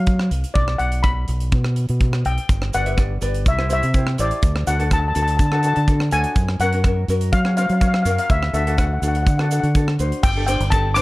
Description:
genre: calypso.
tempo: 124 BPM.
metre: 4/4.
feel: straight.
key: G major.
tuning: A4 = 441 Hz.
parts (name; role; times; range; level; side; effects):
steel pan; melody; 0.0-11.0 s; D5 to D6; -23 LUFS; left 2 dB; none.
overdriven fingered electric bass; bass; 0.0-11.0 s; G1 to Gb3; -20 LUFS; equal; none.
tight metal drum kit; drums; 0.1-11.0 s; crash cymbal, hi-hat, kick drum, rim click; -21 LUFS; equal; none.
egg shaker; percussion; 2.5-11.0 s; none; -37 LUFS; right 7 dB; none.
ukulele; accompaniment; 2.7-11.0 s; C#4 to E5; -26 LUFS; left 1 dB; none.
room: little or no reverb.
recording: dark, warm production.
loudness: -17 LUFS.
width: side -20 dB against mid.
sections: 0.0-10.2 A section.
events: none.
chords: 0.0 Ab7 (rootless); 0.6 N.C.; 2.5 G; 3.5 C; 4.4 D; 6.4 F#; 8.3 D; 10.2 Gsus2.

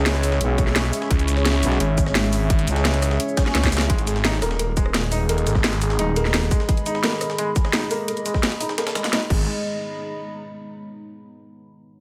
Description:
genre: dark technical drum and bass.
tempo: 172 BPM.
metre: 4/4.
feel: straight.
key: G# minor.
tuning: A4 = 440 Hz.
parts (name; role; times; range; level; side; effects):
deep dark ambient pad; sustained chords; 0.0-9.5 s; G#3 to C#5; -35 LUFS; equal; chorus, built-in reverb, sidechain pumping.
mellow brass ensemble; stabs; 0.0-3.8 s; C#4 to C#5; -32 LUFS; equal; delay.
growling FM bass; bass; 0.0-3.2 s; B1 to C#2; -23 LUFS; equal; tube saturation.
warbly tape-like pad; texture; 0.0-10.8 s; C#4 to B5; -32 LUFS; equal; chorus, built-in reverb, phaser, sidechain pumping.
breakbeat sampler-style drum kit; drums; 0.1-9.2 s; hi-hat, snare drum; -34 LUFS; equal; none.
drum and bass drum kit; drums; 0.1-9.4 s; crash cymbal, hi-hat, rim click, shaker, snare drum; -27 LUFS; equal; overdrive, studio reverb.
electronic kick drum; drums; 0.6-9.4 s; none; -23 LUFS; equal; overdrive, studio reverb.
phased detuned saw bass; bass; 1.1-6.5, 9.3-9.5 s; D#1 to C#2; -25 LUFS; equal; phaser, sidechain pumping.
felt-muted upright piano; arpeggios; 3.9-9.5 s; G#3 to G#4; -30 LUFS; equal; sidechain pumping, low-pass filter, delay.
room: light reverb, digital ambience.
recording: none.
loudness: -21 LUFS.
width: mono.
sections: 0.0-3.9 A section; 3.9-9.5 B section; 9.5-10.9 C section.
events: drop 0.0-3.9; drum fill 3.5-3.9; filter sweep on felt piano 3.9-9.5.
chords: 0.0 C#m; 3.9 G#m.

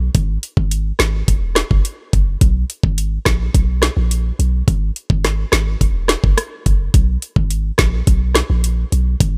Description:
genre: dancehall.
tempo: 106 BPM.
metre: 4/4.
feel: straight.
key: unclear.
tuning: A4 = 439 Hz.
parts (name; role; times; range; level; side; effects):
warm 808-style bass; bass; 0.0-9.4 s; E1 to B1; -20 LUFS; equal; none.
island pop drum kit; drums; 0.1-9.3 s; hi-hat, kick drum, rim click, snare drum; -18 LUFS; equal; none.
room: little or no reverb.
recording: none.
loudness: -17 LUFS.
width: mono.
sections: 0.0-9.4 A section.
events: none.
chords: none.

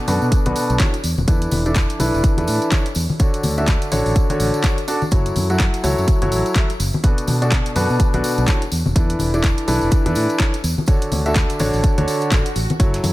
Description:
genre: piano house.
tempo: 125 BPM.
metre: 4/4.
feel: swing 59% on 16ths.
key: unclear.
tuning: A4 = 440 Hz.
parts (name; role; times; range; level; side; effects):
clear grand piano; riff; 0.0-13.1 s; B2 to F#5; -21 LUFS; equal; sidechain pumping, low-pass filter, ping-pong delay.
fingered electric bass; bass; 0.1-13.1 s; E1 to B2; -21 LUFS; equal; sidechain pumping.
punchy analog drum machine; drums; 0.1-13.1 s; handclaps, hi-hat; -26 LUFS; equal; none.
congas and tambourine; percussion; 0.1-13.1 s; none; -27 LUFS; left 2 dB; none.
electronic kick drum; drums; 0.3-12.9 s; none; -17 LUFS; equal; none.
swell; sound effects; 12.2-12.8 s; none; -32 LUFS; right 3 dB; none.
dusty soul sampler-style drum kit; drums; 12.8-13.1 s; hi-hat, snare drum; -37 LUFS; left 1 dB; sidechain pumping on hats, high-pass filter on hats, high-pass filter on snare.
room: digital ambience.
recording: none.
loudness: -16 LUFS.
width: side -17 dB against mid.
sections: 0.0-13.1 A section.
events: swell 12.2-12.8.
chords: 0.0 Bm7; 1.0 E7sus4; 3.2 Dmaj7; 5.1 F#m7; 7.0 Bm7; 8.7 E7sus4; 10.9 Dmaj7.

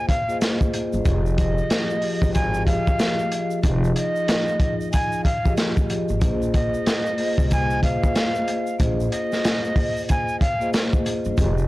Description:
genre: hip hop, boom-bap hip-hop.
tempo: 93 BPM.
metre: 4/4.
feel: swing 61% on 16ths.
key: unclear.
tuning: A4 = 436 Hz.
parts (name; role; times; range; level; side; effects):
breathy bright jazz flute; melody; 0.0-10.7 s; Eb5 to Ab5; -26 LUFS; equal; high-pass filter, low-pass filter, tape echo.
vibraphone with soft mallets; accompaniment; 0.0-11.7 s; F3 to Eb5; -26 LUFS; left 1 dB; high-pass filter, low-pass filter.
crunchy breakbeat drum kit; drums; 0.1-11.6 s; hi-hat, kick drum, snare drum; -22 LUFS; equal; none.
tube shaker; percussion; 0.3-11.7 s; none; -47 LUFS; right 6 dB; none.
upright bass; bass; 0.9-11.7 s; F1 to C2; -24 LUFS; equal; tube saturation.
room: small room reverb.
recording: blown-out, overdriven recording, vinyl crackle, overdrive.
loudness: -19 LUFS.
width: side -18 dB against mid.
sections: 0.0-11.7 A section.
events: none.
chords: 0.0 Bb7sus4; 1.1 Fm7; 6.2 Bb7sus4.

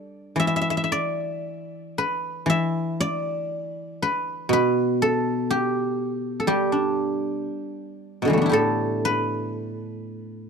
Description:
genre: chinese traditional, Chinese solo plucked strings.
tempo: 56-63 BPM.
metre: 2/4.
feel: rubato.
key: G gong mode.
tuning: A4 = 439 Hz.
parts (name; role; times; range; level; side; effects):
guzheng; solo; 0.0-10.5 s; A2 to E5; -22 LUFS; equal; none.
room: small room ambience.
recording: dry, close 1970s-style studio recording.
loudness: -22 LUFS.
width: side -6 dB against mid.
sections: 0.0-8.5 A section; 8.5-10.5 B section.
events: none.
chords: none.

